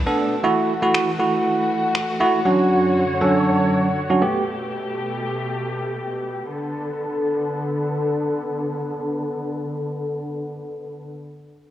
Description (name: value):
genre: dance-pop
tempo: 119 BPM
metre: 4/4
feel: straight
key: B minor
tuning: A4 = 440 Hz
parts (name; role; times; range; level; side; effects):
- warm studio string section; sustained chords; 0.0-11.1 s; F#2 to C#5; -24 LUFS; left 1 dB; low-pass filter
- bell-like tine electric piano; accompaniment; 0.1-4.4 s; F#3 to A4; -18 LUFS; right 2 dB; medium stereo tremolo, low-pass filter
- electronic finger snaps; drums; 0.9-2.1 s; none; -27 LUFS; equal; overdrive
room: moderate lush hall reverb, RT60 2.9 s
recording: worn, warbling old tape, cassette tape, warbly pitch drift, small room ambience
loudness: -19 LUFS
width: side -12 dB against mid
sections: 0.0-6.5 A section; 6.5-10.5 B section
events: none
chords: 0.4 F#m7; 2.5 Dmaj7/F#; 4.2 Gadd9; 6.5 Bm7